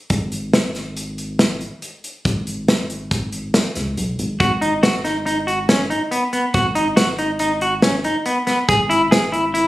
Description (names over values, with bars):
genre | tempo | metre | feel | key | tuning
progressive instrumental, band music in an uneven meter | 140 BPM | 5/4 | straight | G# minor | A4 = 440 Hz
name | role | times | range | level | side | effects
rubbery square bass | bass | 0.1-9.7 s | G#1 to C#2 | -26 LUFS | equal | none
natural country drum kit | drums | 0.1-9.6 s | hi-hat, kick drum, snare drum | -19 LUFS | equal | none
clean electric guitar | arpeggios | 4.4-9.7 s | B3 to G#4 | -18 LUFS | equal | none
room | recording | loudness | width
moderate studio reverb, RT60 0.7 s | recorded on a phone in the room, studio reverb, compression | -17 LUFS | side -16 dB against mid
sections
0.0-9.7 A section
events
none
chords
0.1 N.C.; 4.4 G#7(no3); 8.7 E/G#